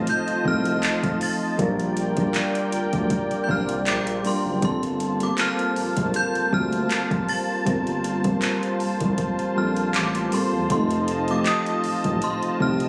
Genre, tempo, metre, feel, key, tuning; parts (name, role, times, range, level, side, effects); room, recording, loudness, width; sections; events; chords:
contemporary R&B; 79 BPM; 4/4; swing 54% on 16ths; G minor; A4 = 440 Hz
synth chime; melody; 0.0-12.9 s; C6 to A6; -30 LUFS; equal; ensemble chorus, phaser, tremolo, digital delay
soft electric-piano-like synth keys; accompaniment; 0.0-12.9 s; F3 to C5; -28 LUFS; equal; chorus
warm analog pad; sustained chords; 0.0-12.9 s; Bb3 to A5; -31 LUFS; equal; chorus
smooth gliding synth bass; bass; 0.0-12.9 s; E1 to D2; -31 LUFS; equal
smooth R&B drum kit; drums; 0.1-12.9 s; handclaps, hi-hat, kick drum; -31 LUFS; equal
light reverb; recorded on a phone in the room, club reverb; -23 LUFS; mono
0.0-12.9 A section
0.0 F7; 1.6 Bb6; 4.6 Gm11; 10.7 F7